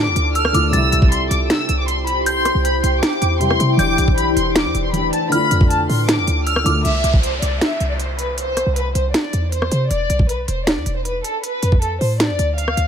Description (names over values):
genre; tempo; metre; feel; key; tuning
hip hop, trap; 157 BPM; 4/4; half-time; C major; A4 = 440 Hz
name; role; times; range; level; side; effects
warm studio violin section; melody; 0.0-12.9 s; A4 to F6; -21 LUFS; left 1 dB; low-pass filter
dark baby grand piano; accompaniment; 0.0-6.9 s; C3 to G4; -23 LUFS; equal; low-pass filter
ethereal airy pad; sustained chords; 0.0-6.8 s; E4 to A5; -24 LUFS; left 1 dB; ensemble chorus, built-in reverb, phaser
short 808-style bass; bass; 0.0-12.9 s; E1 to C3; -20 LUFS; equal; none
trap drum kit; drums; 0.2-12.9 s; finger snaps, hi-hat, kick drum, rim click, snare drum; -19 LUFS; equal; none
glassy synth bell; second line; 0.4-6.8 s; D6 to A6; -26 LUFS; left 2 dB; chorus, ping-pong delay
downlifter; sound effects; 6.8-9.9 s; none; -29 LUFS; equal; none
room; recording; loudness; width
little or no reverb; none; -15 LUFS; side -8 dB against mid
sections
0.0-6.8 A section; 6.8-12.9 B section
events
none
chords
0.0 Dm; 0.7 C; 3.8 Em7; 5.3 Dm; 6.8 C; 9.9 E5; 11.4 Dm